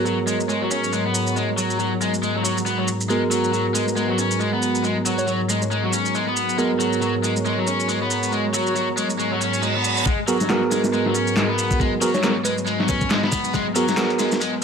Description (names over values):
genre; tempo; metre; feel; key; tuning
breakbeat, breaks; 138 BPM; 4/4; swing 58% on 16ths; G# minor; A4 = 440 Hz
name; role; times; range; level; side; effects
lush unison pad; sustained chords; 0.0-14.6 s; G#2 to A#5; -26 LUFS; left 1 dB; chorus, vintage 12-bit sampler grit, sidechain pumping
raw garage guitar; riff; 0.0-14.5 s; F#3 to C#4; -23 LUFS; left 2 dB; overdrive, tube saturation, low-pass filter, ping-pong delay
bright tine electric piano; stabs; 0.0-14.4 s; B3 to A#4; -25 LUFS; right 4 dB; ping-pong delay
electronic shaker and handclaps; drums; 0.1-14.5 s; none; -28 LUFS; right 1 dB; high-pass filter on perc, studio reverb, high-pass filter on snare
bell-like FM electric piano; melody; 5.2-5.3, 12.1-12.8 s; B4 to C#5; -30 LUFS; equal; chorus, AM radio sound, ping-pong delay
reverse cymbal and riser; sound effects; 9.4-14.6 s; none; -30 LUFS; right 4 dB; none
dusty soul sampler-style drum kit; drums; 10.1-14.5 s; hi-hat, kick drum, snare drum; -24 LUFS; left 1 dB; low-pass filter on hats, studio reverb, low-pass filter on kick, low-pass filter on snare
room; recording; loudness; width
light reverb; high-pass filter; -19 LUFS; side -6 dB against mid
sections
0.0-10.1 A section; 10.1-14.6 B section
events
filter sweep on analog synth pad 0.0-10.1; reverse cymbal 9.4-10.1; build-up 10.1-14.6; filter sweep on drum 10.1-14.6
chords
0.0 G#m9